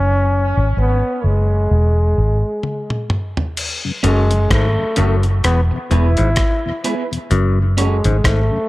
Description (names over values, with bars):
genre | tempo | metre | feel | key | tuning
dub reggae | 64 BPM | 4/4 | swing 58% on 16ths | F# minor | A4 = 443 Hz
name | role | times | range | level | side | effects
clear trombone | melody | 0.0-8.7 s | G#3 to E4 | -21 LUFS | equal | dub echo
vintage muted fingered electric bass | bass | 0.0-8.5 s | E1 to G#1 | -15 LUFS | equal | none
dusty soul sampler-style drum kit | drums | 2.6-8.5 s | crash cymbal, hi-hat, kick drum, rim click, toms | -20 LUFS | equal | none
mellow tonewheel organ | accompaniment | 3.8-8.6 s | E2 to F#4 | -27 LUFS | left 2 dB | chorus vibrato, slow rotary speaker
electric guitar at the edge of break-up | accompaniment | 4.0-8.0 s | B3 to C#5 | -26 LUFS | right 5 dB | dub echo
bright clav | riff | 4.0-8.4 s | E2 to G#2 | -24 LUFS | left 5 dB | dub echo
room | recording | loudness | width
light reverb | none | -14 LUFS | side -18 dB against mid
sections
0.0-3.6 A section; 3.6-8.7 B section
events
break 0.0-3.6; drum fill 2.6-3.6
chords
0.0 F#5; 1.7 E; 3.6 F#m; 5.4 E; 7.3 F#m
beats
0.76 1.70 2.63 | 3.57 4.50 5.44 6.38 | 7.31 8.25